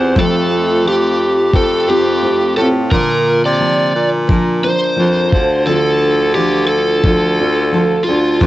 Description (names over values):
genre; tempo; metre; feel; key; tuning
acoustic pop; 87 BPM; 4/4; swing 55% on 16ths; D minor; A4 = 441 Hz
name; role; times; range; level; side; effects
overdriven slide guitar; melody; 0.0-8.5 s; F4 to D5; -15 LUFS; right 1 dB; cassette tape
picked steel-string acoustic guitar; accompaniment; 0.0-8.5 s; Bb2 to Bb4; -17 LUFS; equal; double-tracked left and right, cassette tape
clear baritone saxophone; bass; 0.0-8.5 s; C2 to C3; -17 LUFS; left 1 dB; none
electronic kick drum; drums; 0.2-8.5 s; none; -14 LUFS; equal; none
room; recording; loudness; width
small room ambience; home recording on cassette, nothing above 7.9 kHz; -11 LUFS; side -15 dB against mid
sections
0.0-8.5 A section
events
none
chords
0.2 Fadd9; 2.9 Bb; 5.3 Dm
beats
| 0.16 0.85 1.53 2.22 | 2.91 3.60 4.29 4.97 | 5.66 6.35 7.04 7.72 | 8.41